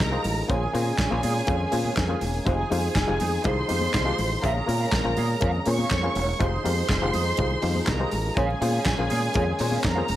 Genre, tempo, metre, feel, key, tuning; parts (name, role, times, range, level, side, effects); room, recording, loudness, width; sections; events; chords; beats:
disco; 122 BPM; 4/4; straight; A4 = 440 Hz
dark studio violin section; second line; 0.0-10.2 s; Ab4 to Db6; -29 LUFS; right 2 dB
mellow electric guitar; accompaniment; 0.0-10.1 s; Eb4 to F5; -34 LUFS; right 5 dB; wah
warm French horn section; sustained chords; 0.0-10.2 s; F3 to Ab4; -33 LUFS; left 1 dB
fingered electric bass; bass; 0.0-10.2 s; E1 to Bb2; -27 LUFS; equal
modern studio drum kit; drums; 0.0-10.2 s; handclaps, hi-hat, kick drum, snare drum; -28 LUFS; equal
congas; percussion; 0.0-10.2 s; -35 LUFS; left 4 dB
muted clav; accompaniment; 0.1-10.2 s; Ab3 to C5; -30 LUFS; left 3 dB
light reverb; -22 LUFS; side -13 dB against mid
0.0-10.2 A section
0.5 Bbm7; 2.5 Fm7; 4.4 Bbm7; 6.4 Fm7; 8.4 Bbm7
0.00 | 0.49 0.99 1.48 1.97 | 2.47 2.96 3.45 3.94 | 4.44 4.93 5.42 5.91 | 6.41 6.90 7.39 7.88 | 8.37 8.87 9.36 9.85